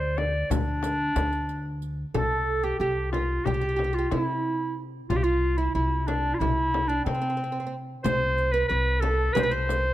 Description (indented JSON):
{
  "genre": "Turkish makam ensemble",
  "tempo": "183 BPM (eighths)",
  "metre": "9/8",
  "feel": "straight",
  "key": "C makam rast",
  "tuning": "A4 = 437 Hz",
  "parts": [
    { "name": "bright clarinet", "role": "melody", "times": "0.0-9.9 s", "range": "C4 to D5", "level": "-27 LUFS", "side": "equal", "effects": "none" },
    { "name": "upright bass", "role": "bass", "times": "0.0-9.9 s", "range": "C2 to C3", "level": "-28 LUFS", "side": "equal", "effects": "none" },
    { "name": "frame drum", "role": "percussion", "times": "0.2-9.8 s", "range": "none", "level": "-33 LUFS", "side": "left 7 dB", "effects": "none" },
    { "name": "riq", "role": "percussion", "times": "0.5-1.9, 8.1-9.8 s", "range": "none", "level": "-36 LUFS", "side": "right 9 dB", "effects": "none" },
    { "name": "oud", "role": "second line", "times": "2.1-9.9 s", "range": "C4 to C5", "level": "-32 LUFS", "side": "right 6 dB", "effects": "none" }
  ],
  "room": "little or no reverb",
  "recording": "close, detailed microphones",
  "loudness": "-24 LUFS",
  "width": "side -14 dB against mid",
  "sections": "0.0-2.1 A section; 2.1-9.9 B section",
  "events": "none",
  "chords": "none"
}